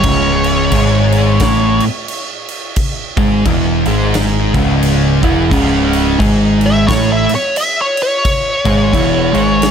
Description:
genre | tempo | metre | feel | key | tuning
stoner and doom metal | 88 BPM | 4/4 | swing 59% on 8ths | C# minor | A4 = 440 Hz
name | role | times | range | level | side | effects
fuzz lead guitar | melody | 0.0-1.8, 6.7-9.7 s | C#5 to E5 | -16 LUFS | left 1 dB | wah, distortion, tape echo
thick fuzz guitar | riff | 0.0-9.7 s | C#2 to A3 | -16 LUFS | left 10 dB | distortion
thick fuzz guitar | riff | 0.0-9.7 s | C#2 to A3 | -15 LUFS | right 8 dB | distortion
growling picked electric bass | bass | 0.0-9.7 s | C#1 to A1 | -18 LUFS | equal | overdrive
big rock drum kit | drums | 0.0-9.7 s | crash cymbal, kick drum, snare drum | -19 LUFS | equal | none
room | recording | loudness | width
little or no reverb | none | -11 LUFS | side -8 dB against mid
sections
0.0-9.7 A section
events
lead electric guitar solo 0.0-9.7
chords
0.0 C#m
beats
| 0.05 0.73 1.41 2.10 | 2.78 3.46 4.15 4.83 | 5.51 6.20 6.88 7.57 | 8.25 8.94 9.62

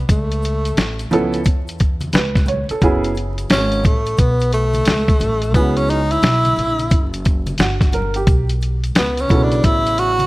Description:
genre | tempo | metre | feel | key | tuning
hip hop, jazz-hop | 88 BPM | 4/4 | swing 66% on 16ths | unclear | A4 = 440 Hz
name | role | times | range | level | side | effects
upright bass | bass | 0.0-10.3 s | F#1 to E2 | -21 LUFS | equal | none
breathy tenor saxophone | melody | 0.1-10.3 s | A3 to F#4 | -19 LUFS | equal | slapback echo
lo-fi sampler-style drum kit | drums | 0.1-10.3 s | hi-hat, kick drum, snare drum | -16 LUFS | equal | none
tube shaker and congas | percussion | 0.1-10.3 s | none | -33 LUFS | left 1 dB | none
warm upright piano | accompaniment | 1.1-10.3 s | C#3 to C#5 | -20 LUFS | right 2 dB | none
room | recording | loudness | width
light reverb | vinyl crackle | -14 LUFS | side -19 dB against mid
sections
0.0-10.3 A section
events
tenor saxophone solo 0.0-10.3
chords
0.1 C#m7b13; 2.8 F#madd9; 5.5 C#m7; 6.9 Gmmaj7/F#; 8.3 Bsus2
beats
| 0.09 0.78 1.46 2.14 | 2.82 3.50 4.18 4.87 | 5.55 6.23 6.91 7.59 | 8.28 8.96 9.64

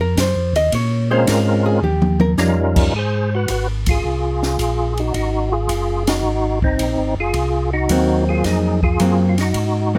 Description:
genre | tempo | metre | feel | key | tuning
soul jazz organ trio | 109 BPM | 4/4 | swing 69% on 8ths | Ab mixolydian | A4 = 441 Hz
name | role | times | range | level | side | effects
archtop guitar, miked and amplified | accompaniment | 0.0-2.3, 7.9-10.0 s | Gb3 to Eb5 | -22 LUFS | equal | none
mellow tonewheel organ | bass | 0.0-10.0 s | Gb1 to Bb2 | -22 LUFS | equal | slow rotary speaker
open jazz drum kit | drums | 0.2-9.7 s | crash cymbal, hi-hat, kick drum, ride cymbal, snare drum, toms | -25 LUFS | equal | none
percussive tonewheel organ | melody | 1.1-10.0 s | G3 to C5 | -22 LUFS | equal | slow rotary speaker, chorus vibrato
room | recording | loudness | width
light reverb | close, detailed microphones | -18 LUFS | mono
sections
0.0-2.9 A section; 2.9-10.0 B section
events
hollow-body jazz guitar solo 0.0-2.9; drum fill 1.8-2.4; band accent 6.0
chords
0.0 Ebm69; 0.7 Bbm7; 1.8 Eb9; 2.9 Ab9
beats
0.18 | 0.73 1.28 1.83 2.38 | 2.93 3.48 4.04 4.59 | 5.14 5.69 6.24 6.79 | 7.35 7.90 8.45 9.00 | 9.55

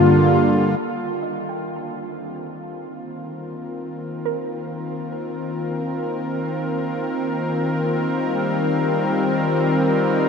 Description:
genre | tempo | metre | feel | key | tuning
ambient | free time | none | none | F mixolydian | A4 = 444 Hz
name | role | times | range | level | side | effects
warm analog pad | sustained chords | 0.0-10.3 s | D3 to Bb4 | -20 LUFS | left 1 dB | chorus
warm sub bass | bass | 0.0-0.7 s | G2 | -26 LUFS | equal | none
soft round pluck | arpeggios | 1.2-5.3 s | Bb4 to A5 | -35 LUFS | right 6 dB | none
room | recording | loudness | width
wet huge ambient reverb, RT60 8.5 s | in a vast, echoing space | -20 LUFS | side -6 dB against mid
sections
0.8-10.3 A section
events
fade-in on analog synth pad 0.8-10.3; fade-in on synth pluck 0.8-10.3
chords
0.0 Gm9; 0.8 F7sus4; 7.7 Eb69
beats
free time

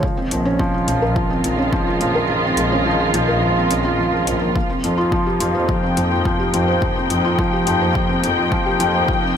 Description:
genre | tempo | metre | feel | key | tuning
piano and strings electronica | 106 BPM | 4/4 | straight | unclear | A4 = 440 Hz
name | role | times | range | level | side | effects
dark symphonic string section | sustained chords | 0.0-9.4 s | Eb3 to G5 | -20 LUFS | left 1 dB | sidechain pumping
felt-muted upright piano | riff | 0.0-9.4 s | F3 to C5 | -20 LUFS | equal | ping-pong delay
electronic kick drum | drums | 0.0-9.2 s | none | -24 LUFS | equal | overdrive
dark studio double bass section | bass | 0.3-9.0 s | Bb1 to F2 | -24 LUFS | equal | sidechain pumping
electronic hi-hat | drums | 0.3-8.9 s | none | -26 LUFS | left 3 dB | overdrive
room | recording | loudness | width
moderate lush hall reverb, RT60 1.9 s, small room ambience | none | -16 LUFS | side -8 dB against mid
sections
0.0-9.4 A section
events
kick drops out 2.3-4.6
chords
0.0 Bbmadd9; 4.6 Fsus2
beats
| 0.03 0.59 1.16 1.73 | 2.29 2.86 3.42 3.99 | 4.55 5.12 5.69 6.25 | 6.82 7.38 7.95 8.52 | 9.08

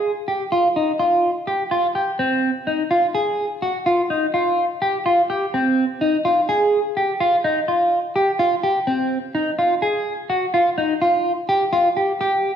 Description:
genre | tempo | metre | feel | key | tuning
progressive instrumental, progressive | 252 BPM (eighths) | 7/8 | straight | unclear | A4 = 440 Hz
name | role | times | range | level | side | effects
clean electric guitar | solo | 0.0-12.5 s | C4 to Ab4 | -17 LUFS | equal | phaser
room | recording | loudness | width
wet recital hall reverb, RT60 1.6 s | recorded in a church or concert hall | -17 LUFS | side -8 dB against mid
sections
0.0-12.2 A section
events
none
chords
none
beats
0.04 0.28 | 0.52 0.76 1.00 1.24 1.48 1.72 1.96 | 2.19 2.43 2.67 2.91 3.15 3.39 3.63 | 3.87 4.11 4.34 4.58 4.82 5.06 5.30 | 5.54 5.78 6.01 6.25 6.49 6.73 6.97 | 7.21 7.44 7.68 7.92 8.16 8.40 8.63 | 8.87 9.11 9.35 9.59 9.82 10.06 10.30 | 10.54 10.78 11.02 11.25 11.49 11.73 11.97 | 12.21 12.44

